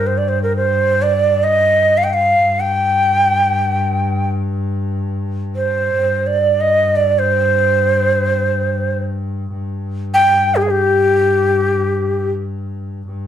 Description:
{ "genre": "Arabic maqam ensemble", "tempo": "free time", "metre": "none", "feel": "none", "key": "unclear", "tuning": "A4 = 440 Hz", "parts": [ { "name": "breathy bright ney", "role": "melody", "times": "0.0-12.3 s", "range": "G4 to G5", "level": "-14 LUFS", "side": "right 1 dB", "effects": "slapback echo" }, { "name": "bright double bass", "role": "drone", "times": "0.0-13.3 s", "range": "G2", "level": "-21 LUFS", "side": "left 1 dB", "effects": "none" } ], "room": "moderate small room ambience, RT60 0.5 s", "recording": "dark, warm production", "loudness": "-14 LUFS", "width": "side -10 dB against mid", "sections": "0.0-13.1 A section", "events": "none", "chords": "none", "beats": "free time" }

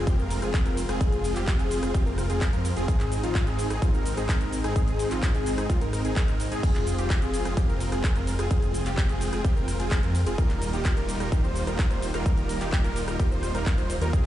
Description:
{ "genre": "EDM, festival progressive house", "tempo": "128 BPM", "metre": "4/4", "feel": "straight", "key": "F minor", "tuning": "A4 = 441 Hz", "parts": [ { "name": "lush unison pad", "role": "sustained chords", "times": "0.0-14.3 s", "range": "Eb3 to G5", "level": "-36 LUFS", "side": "equal", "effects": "chorus, sidechain pumping" }, { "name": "wide unison lead", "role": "arpeggios", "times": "0.0-14.3 s", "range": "F4 to C5", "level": "-33 LUFS", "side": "left 2 dB", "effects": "sidechain pumping, digital delay" }, { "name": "supersaw chords", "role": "riff", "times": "0.0-14.3 s", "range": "G3 to C5", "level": "-32 LUFS", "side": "right 1 dB", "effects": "sidechain pumping, digital delay" }, { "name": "wide detuned saw bass", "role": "bass", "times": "0.0-14.3 s", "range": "Eb1 to Ab2", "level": "-30 LUFS", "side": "equal", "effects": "chorus, sidechain pumping" }, { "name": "big-room dance drum kit", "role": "drums", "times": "0.1-14.2 s", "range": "crash cymbal, handclaps, hi-hat, rim click, shaker", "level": "-35 LUFS", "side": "equal", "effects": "none" }, { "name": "electronic kick drum", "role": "drums", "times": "0.1-14.2 s", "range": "none", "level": "-24 LUFS", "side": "equal", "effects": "none" } ], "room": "little or no reverb", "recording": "played on a big sound system in a bare room, stone room reverb, nothing above 10.9 kHz", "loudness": "-23 LUFS", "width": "side -13 dB against mid", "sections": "0.0-14.3 A section", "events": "none", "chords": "0.0 Fm; 2.9 Ab; 6.6 Fm; 10.4 Ebadd9", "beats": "0.07 0.54 | 1.01 1.48 1.95 2.41 | 2.88 3.35 3.82 4.29 | 4.76 5.23 5.70 6.16 | 6.63 7.10 7.57 8.04 | 8.51 8.98 9.45 9.91 | 10.38 10.85 11.32 11.79 | 12.26 12.73 13.20 13.66 | 14.13" }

